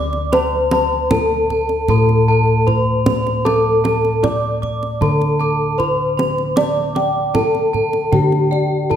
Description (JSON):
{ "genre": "Javanese gamelan", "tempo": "77 BPM", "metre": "4/4", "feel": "straight", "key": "D slendro", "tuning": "A4 = 440 Hz", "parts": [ { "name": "gamelan-type bronze metallophone", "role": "melody", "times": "0.0-9.0 s", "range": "G4-35c to D5", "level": "-18 LUFS", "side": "left 1 dB", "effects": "slapback echo" }, { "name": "gamelan-type bronze metallophone", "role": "arpeggios", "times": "0.0-9.0 s", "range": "G5-35c to D6", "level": "-24 LUFS", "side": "right 4 dB", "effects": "none" }, { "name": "gamelan-type bossed gongs", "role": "bass", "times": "0.0-9.0 s", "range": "D2 to D5", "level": "-19 LUFS", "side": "equal", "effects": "none" }, { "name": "kendang", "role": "percussion", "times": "0.1-9.0 s", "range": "none", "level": "-22 LUFS", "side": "right 2 dB", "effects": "none" }, { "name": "gamelan-type bossed gongs", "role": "arpeggios", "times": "0.3-9.0 s", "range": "D5 to D6", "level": "-24 LUFS", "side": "left 5 dB", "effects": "none" } ], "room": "wet recital hall reverb, RT60 1.6 s", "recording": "none", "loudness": "-14 LUFS", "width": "side -9 dB against mid", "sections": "0.0-9.0 A section", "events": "none", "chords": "none", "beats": "| 0.33 1.11 1.89 2.67 | 3.45 4.23 5.01 5.79 | 6.57 7.34 8.12 8.90" }